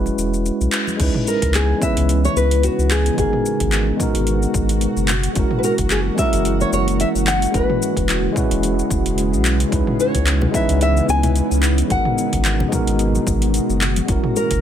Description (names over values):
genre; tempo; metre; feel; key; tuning
sunset chillout; 110 BPM; 4/4; swing 56% on 16ths; C# dorian; A4 = 440 Hz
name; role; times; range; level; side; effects
tine electric piano; accompaniment; 0.0-14.6 s; G#3 to B4; -22 LUFS; equal; auto-pan, digital delay
warm sub bass; bass; 0.0-14.6 s; E1 to C#2; -20 LUFS; equal; none
deep house drum kit; drums; 0.1-14.6 s; crash cymbal, handclaps, hi-hat, shaker, toms; -24 LUFS; equal; overdrive
congas; percussion; 0.1-1.0, 10.4-14.1 s; none; -28 LUFS; left 2 dB; none
shimmering ambient pad; sustained chords; 1.4-14.6 s; B2 to F#4; -24 LUFS; right 1 dB; chorus, built-in reverb
electronic kick drum; drums; 1.0-14.6 s; none; -24 LUFS; equal; overdrive
nylon-string guitar; melody; 1.3-14.6 s; F#4 to G#5; -22 LUFS; left 2 dB; digital delay
room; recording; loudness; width
light reverb, digital ambience; none; -16 LUFS; side -10 dB against mid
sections
1.0-14.6 A section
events
band accent 0.7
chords
0.0 E69; 1.0 C#m7; 3.2 G#m7; 5.1 F#7; 7.5 E69; 9.7 C#m7; 11.9 G#m7; 13.8 F#7